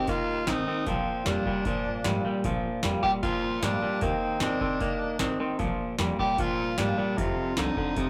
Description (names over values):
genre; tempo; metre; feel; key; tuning
rockabilly; 152 BPM; 4/4; straight; Bb major; A4 = 439 Hz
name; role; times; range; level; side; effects
raspy tenor saxophone; melody; 0.0-8.1 s; C4 to G4; -32 LUFS; equal; none
picked steel-string acoustic guitar; accompaniment; 0.0-8.1 s; F2 to G4; -40 LUFS; equal; none
twangy electric guitar; riff; 0.0-8.1 s; F2 to C4; -31 LUFS; equal; none
upright bass; bass; 0.1-8.1 s; F1 to C3; -38 LUFS; equal; none
booming analog drum machine; drums; 0.1-8.1 s; hi-hat, kick drum, snare drum; -36 LUFS; equal; none
room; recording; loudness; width
moderate studio reverb, RT60 0.5 s; rough rehearsal-room recording; -28 LUFS; mono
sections
0.0-8.1 A section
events
none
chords
0.0 Eb; 0.9 Bb; 4.0 Eb; 5.6 Bb; 7.2 F7